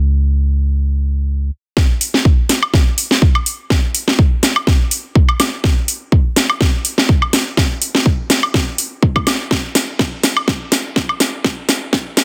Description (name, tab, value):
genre	piano house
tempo	124 BPM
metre	4/4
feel	swing 54% on 16ths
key	unclear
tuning	A4 = 439 Hz
part	solid FM bass	bass	0.0-1.5 s	Db2	-16 LUFS	equal	sidechain pumping
part	electronic kick drum	drums	1.8-12.0 s	none	-16 LUFS	equal	none
part	house drum kit	drums	1.8-12.2 s	hi-hat, snare drum, woodblock	-18 LUFS	equal	none
room	light reverb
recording	dense, heavily limited modern master, high-pass filter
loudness	-16 LUFS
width	mono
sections	0.0-1.8 A section; 1.8-12.2 B section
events	build-up 1.8-12.2; drum fill 1.8-12.2; filter sweep 1.8-12.2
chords	none